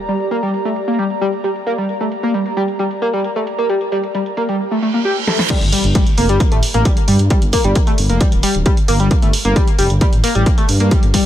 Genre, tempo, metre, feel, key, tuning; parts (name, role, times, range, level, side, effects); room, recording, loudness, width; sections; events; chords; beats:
driving peak-time techno; 133 BPM; 4/4; straight; G minor; A4 = 440 Hz
sub drop, reverse cymbal and impact; sound effects; 0.0-0.1, 4.8-7.3 s; -24 LUFS; right 2 dB
airy breathy pad; texture; 0.0-4.6 s; G4 to Bb5; -24 LUFS; right 1 dB; chorus, sidechain pumping
overdriven synth lead; riff; 0.1-11.2 s; G3 to G4; -18 LUFS; left 1 dB; distortion, analog chorus, sidechain pumping, ping-pong delay
punchy analog drum machine; drums; 0.1-11.2 s; crash cymbal, hi-hat, snare drum; -22 LUFS; right 2 dB; low-pass filter on hats, low-pass filter on cymbals, low-pass filter on snare, low-pass filter on room
electronic kick drum; drums; 5.5-11.2 s; -14 LUFS; equal; overdrive
dark detuned saw bass; bass; 5.6-11.1 s; D1 to G2; -16 LUFS; equal; sidechain pumping
light reverb, digital ambience; -13 LUFS; side -11 dB against mid
0.0-5.5 A section; 5.5-11.3 B section
reverse cymbal 4.8-5.5; drum fill 5.3; drop 5.5-11.3; impact 5.5-7.3
0.0 Gm; 5.5 N.C.
| 0.09 0.54 0.99 1.44 | 1.89 2.34 2.79 3.24 | 3.69 4.15 4.60 5.05 | 5.50 5.95 6.40 6.85 | 7.30 7.76 8.21 8.66 | 9.11 9.56 10.01 10.46 | 10.91